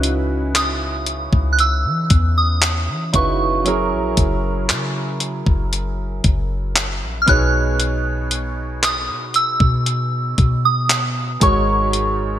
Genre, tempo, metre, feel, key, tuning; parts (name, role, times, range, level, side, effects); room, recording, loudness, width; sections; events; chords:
contemporary R&B; 58 BPM; 4/4; straight; C# dorian; A4 = 440 Hz
soft synth bell; melody; 0.0-12.4 s; C#6 to F#6; -21 LUFS; right 2 dB; chorus, phaser, digital delay
warm baby grand piano; accompaniment; 0.0-12.4 s; G#2 to E5; -24 LUFS; right 3 dB; analog chorus
soft 808-style bass; bass; 0.0-12.4 s; F#1 to E3; -21 LUFS; left 1 dB
clean 12-bit digital drum machine; drums; 0.0-12.2 s; handclaps, hi-hat, kick drum; -18 LUFS; left 1 dB; gated reverb
light reverb; bright 1980s-style digital production; -16 LUFS; side -11 dB against mid
0.0-12.4 A section
0.0 C#m11; 3.7 F#9; 7.3 B69; 11.4 G#9sus4